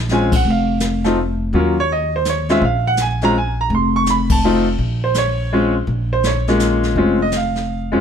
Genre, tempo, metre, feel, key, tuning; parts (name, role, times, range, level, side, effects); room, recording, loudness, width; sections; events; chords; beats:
jazz piano trio; 166 BPM; 3/4; swing 65% on 8ths; Bb minor; A4 = 440 Hz
upright bass; bass; 0.0-8.0 s; F1 to F2; -19 LUFS; equal
bright upright piano; melody; 0.1-8.0 s; Gb3 to Db6; -17 LUFS; equal
jazz brush drum kit; drums; 0.1-8.0 s; brushed snare drum, crash cymbal, hi-hat, kick drum, ride cymbal, snare drum; -23 LUFS; left 2 dB
light reverb; -15 LUFS; side -8 dB against mid
0.0-4.8 A section; 4.8-8.0 A section
band accent 4.3
0.5 N.C.; 1.5 Eb7(no3); 2.6 Bb7(no3); 3.7 F; 4.8 Bbm7
0.09 | 0.46 0.82 1.18 | 1.54 1.90 2.26 | 2.62 2.99 3.35 | 3.71 4.07 4.43 | 4.79 5.16 5.52 | 5.88 6.24 6.61 | 6.97 7.33 7.69